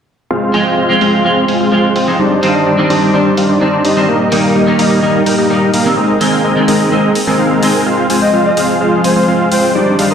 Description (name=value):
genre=EDM, festival progressive house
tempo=127 BPM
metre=4/4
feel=straight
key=unclear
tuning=A4 = 440 Hz
part: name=lush unison pad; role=sustained chords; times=1.2-10.1 s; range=Eb3 to C5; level=-20 LUFS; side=equal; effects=chorus, phaser
part: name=dense compressed supersaw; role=riff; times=0.3-10.1 s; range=G3 to Ab5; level=-12 LUFS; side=equal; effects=low-pass filter, digital delay
part: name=clean electric guitar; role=accompaniment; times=0.5-7.7 s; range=Eb3 to F4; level=-15 LUFS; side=right 1 dB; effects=analog chorus, digital delay
part: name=electronic hi-hat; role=drums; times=0.5-10.1 s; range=none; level=-23 LUFS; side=equal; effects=low-pass filter on hats
part: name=breathy flute-like synth lead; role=melody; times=8.2-10.1 s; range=Bb4 to Eb5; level=-16 LUFS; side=left 3 dB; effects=chorus, digital delay
room=wet lush hall reverb, RT60 1.6 s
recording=played on a big sound system in a bare room, stone room reverb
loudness=-10 LUFS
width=side -7 dB against mid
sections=0.3-10.1 A section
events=filter sweep on analog synth pad 0.3-10.1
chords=0.3 Fm; 2.2 Cmadd9; 4.1 Eb; 6.0 Abadd9; 7.9 Fm